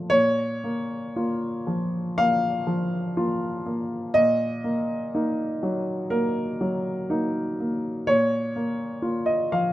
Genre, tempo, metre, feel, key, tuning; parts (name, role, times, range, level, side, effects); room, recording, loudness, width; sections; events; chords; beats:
neoclassical minimalist piano; 61 BPM; 4/4; rubato; Bb minor; A4 = 441 Hz
warm baby grand piano; solo; 0.0-9.7 s; Bb2 to F6; -23 LUFS; equal
moderate studio ambience, RT60 0.5 s; rough home demo mix; -23 LUFS; side -14 dB against mid
0.1-9.7 A section
0.1 Bbm; 4.2 Ebm/Bb; 8.1 Bbm
| 0.12 1.17 2.19 3.18 | 4.16 5.14 6.12 7.10 | 8.07 9.03